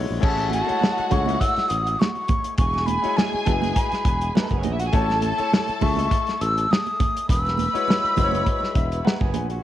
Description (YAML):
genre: lush 1970s-style soul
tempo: 102 BPM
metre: 4/4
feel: swing 54% on 16ths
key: E major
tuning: A4 = 439 Hz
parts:
  - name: clear grand piano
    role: accompaniment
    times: 0.0-9.6 s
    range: G#3 to G#5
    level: -30 LUFS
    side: left 9 dB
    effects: none
  - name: modern bright fingered electric bass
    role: bass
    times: 0.0-9.6 s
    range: E1 to C#2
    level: -26 LUFS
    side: equal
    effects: none
  - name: breathy jazz flute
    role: melody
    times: 0.2-9.0 s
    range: G#5 to E6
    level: -24 LUFS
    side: left 1 dB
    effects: cassette tape
  - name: warm studio violin section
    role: second line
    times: 0.2-9.3 s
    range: A3 to B5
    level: -29 LUFS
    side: equal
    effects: tape echo
  - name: warm soul drum kit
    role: drums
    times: 0.2-9.6 s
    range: crash cymbal, hi-hat, kick drum, snare drum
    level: -23 LUFS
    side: equal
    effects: cassette tape
  - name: congas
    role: percussion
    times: 0.2-9.5 s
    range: none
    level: -31 LUFS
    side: right 10 dB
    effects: none
  - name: electric guitar through a small old amp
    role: riff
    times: 4.4-5.1, 9.0-9.6 s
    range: B3 to B4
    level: -33 LUFS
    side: right 9 dB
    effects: none
room: light reverb, small room ambience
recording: home recording on cassette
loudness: -19 LUFS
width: side -13 dB against mid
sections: 0.2-9.6 A section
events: grand piano fill 8.5-9.6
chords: 0.2 Amaj7; 2.6 E69; 4.9 Amaj7; 7.3 E69